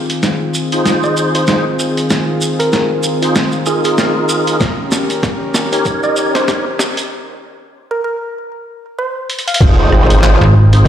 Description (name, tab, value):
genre	glitch hop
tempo	96 BPM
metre	4/4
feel	swing 58% on 16ths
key	F minor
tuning	A4 = 440 Hz
part	warm analog pad	sustained chords	0.0-10.9 s	Eb3 to Bb4	-19 LUFS	left 1 dB	chorus, vintage 12-bit sampler grit, sidechain pumping
part	boom bap sampler-style drum kit	drums	0.1-10.9 s	crash cymbal, handclaps, hi-hat, rim click, snare drum	-18 LUFS	equal	none
part	shekere	percussion	0.1-7.1 s	none	-24 LUFS	right 3 dB	none
part	tonewheel organ	stabs	0.7-10.9 s	Eb4 to Db5	-18 LUFS	equal	overdrive, chorus vibrato, slow rotary speaker, vintage 12-bit sampler grit, sidechain pumping, low-pass filter, ping-pong delay
part	woody wave-folded pluck	melody	1.0-9.7 s	Ab4 to F5	-21 LUFS	right 1 dB	chorus, ping-pong delay
part	electronic kick drum	drums	4.6-10.9 s	none	-14 LUFS	equal	overdrive
part	growl bass	bass	9.6-10.9 s	F1 to Ab1	-11 LUFS	equal	chorus
part	impact	sound effects	9.7-10.9 s	none	-20 LUFS	equal	none
part	slap-like FM bass	bass	10.4-10.8 s	Ab1	-7 LUFS	equal	none
room	moderate lush hall reverb, RT60 2.0 s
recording	played on a big sound system in a bare room, large studio reverb, high-pass filter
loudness	-12 LUFS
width	side -10 dB against mid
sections	0.0-9.6 A section; 9.6-10.9 B section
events	build-up 0.0-9.6; drum fill 0.0-7.1, 9.3-9.6; filter sweep on tonewheel organ 0.0-9.6; break 7.1-9.6; drop 9.6-10.9; impact 9.6-10.9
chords	0.0 Fm7; 4.6 Eb7; 9.6 Fm7